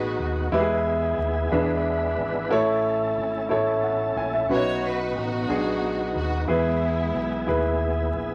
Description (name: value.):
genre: slow gospel.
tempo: 60 BPM (dotted quarters).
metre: 6/8.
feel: straight.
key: E major.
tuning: A4 = 440 Hz.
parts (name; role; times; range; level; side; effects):
rich studio string section; melody; 0.0-0.5, 4.5-7.8 s; G#3 to C#5; -33 LUFS; equal; none.
warm grand piano; accompaniment; 0.0-8.3 s; B2 to G#5; -26 LUFS; equal; none.
tonewheel organ; sustained chords; 0.0-8.3 s; G#3 to B4; -33 LUFS; equal; slow rotary speaker, overdrive, chorus vibrato.
deep dub fingered electric bass; bass; 0.0-8.3 s; G#1 to E2; -32 LUFS; equal; none.
room: moderate club reverb, RT60 0.6 s.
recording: vinyl crackle.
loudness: -24 LUFS.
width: mono.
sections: 0.0-8.3 A section.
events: none.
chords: 0.0 B; 0.5 E; 1.5 E7; 2.5 A; 4.5 B; 6.5 E.